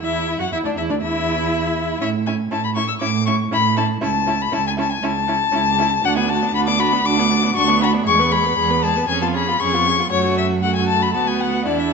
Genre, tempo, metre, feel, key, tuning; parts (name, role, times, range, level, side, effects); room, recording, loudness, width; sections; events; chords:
quick classical-period movement for string quartet; 119 BPM; 4/4; rubato; A major; A4 = 439 Hz
warm violin; melody; 0.0-11.9 s; C#5 to E6; -19 LUFS; left 6 dB
dark violin; second line; 0.0-11.9 s; D4 to B4; -26 LUFS; left 1 dB
rich viola; accompaniment; 0.0-11.9 s; G#3 to F#4; -25 LUFS; right 5 dB
warm cello; bass; 0.0-11.9 s; C#2 to A2; -22 LUFS; right 6 dB
wet recital hall reverb, RT60 1.4 s; nothing above 7.9 kHz; -16 LUFS; side -5 dB against mid
0.0-11.9 A section
0.0 Dsus2; 2.0 A; 4.0 A/C#; 6.0 Bm/D; 8.1 E; 9.1 C#7/E#; 10.1 F#m; 11.1 Bm/D